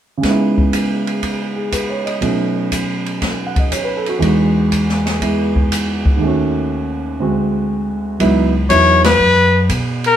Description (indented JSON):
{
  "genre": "jazz, small-group swing and bop",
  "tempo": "120 BPM",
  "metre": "4/4",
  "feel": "swing 69% on 8ths",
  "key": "C# minor",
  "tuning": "A4 = 435 Hz",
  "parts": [
    { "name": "warm baby grand piano", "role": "accompaniment", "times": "0.2-9.0 s", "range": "D2 to F#5", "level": "-16 LUFS", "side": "right 1 dB", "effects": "none" },
    { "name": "open jazz drum kit", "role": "drums", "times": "0.2-10.1 s", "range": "hi-hat, kick drum, ride cymbal, snare drum", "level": "-20 LUFS", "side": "equal", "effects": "none" },
    { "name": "upright bass", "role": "bass", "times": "8.2-10.2 s", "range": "C#2 to B2", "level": "-16 LUFS", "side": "equal", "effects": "none" },
    { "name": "bright trumpet", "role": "melody", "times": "8.7-10.2 s", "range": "A#4 to C#5", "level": "-11 LUFS", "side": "left 3 dB", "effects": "none" }
  ],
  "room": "wet studio reverb, RT60 0.6 s",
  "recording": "heard from further back in the room",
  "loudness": "-14 LUFS",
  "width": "side -10 dB against mid",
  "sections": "0.2-8.2 A section; 8.2-10.2 B section",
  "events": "break 6.2-8.2; band accent 8.9",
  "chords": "0.2 C#m7; 2.2 B7; 4.2 Emaj7; 6.2 D#m7b5; 7.2 D7#11; 8.2 C#m11",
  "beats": "| 0.23 0.73 1.23 1.72 | 2.22 2.72 3.21 3.71 | 4.21 4.71 5.21 5.70 | 6.20 6.70 7.20 7.70 | 8.19 8.69 9.19 9.69"
}